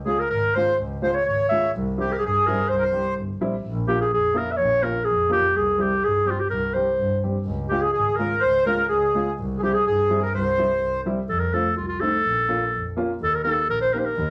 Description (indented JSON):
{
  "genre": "klezmer",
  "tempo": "126 BPM",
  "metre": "2/4",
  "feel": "straight",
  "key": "C phrygian dominant",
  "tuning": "A4 = 440 Hz",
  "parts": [
    { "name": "dark double bass", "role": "bass", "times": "0.0-14.3 s", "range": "G1 to G2", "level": "-31 LUFS", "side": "equal", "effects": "none" },
    { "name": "warm clarinet", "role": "melody", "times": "0.1-14.3 s", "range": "F4 to E5", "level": "-24 LUFS", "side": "equal", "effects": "none" },
    { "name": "accordion", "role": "second line", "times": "0.1-3.1, 7.7-11.0 s", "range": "G4 to Db5", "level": "-28 LUFS", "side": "equal", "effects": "none" },
    { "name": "dark upright piano", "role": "accompaniment", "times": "0.1-14.1 s", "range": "G3 to G4", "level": "-31 LUFS", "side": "equal", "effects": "none" }
  ],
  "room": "wet studio reverb, RT60 0.6 s",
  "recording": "none",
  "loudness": "-22 LUFS",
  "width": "mono",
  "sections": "0.0-3.6 A section; 3.6-11.3 A section; 11.3-14.3 B section",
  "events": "none",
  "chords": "0.0 Db; 1.7 C; 3.6 Bbm; 5.6 C5; 7.5 Db; 9.4 C; 11.3 F; 12.2 Bbm; 13.2 Eb"
}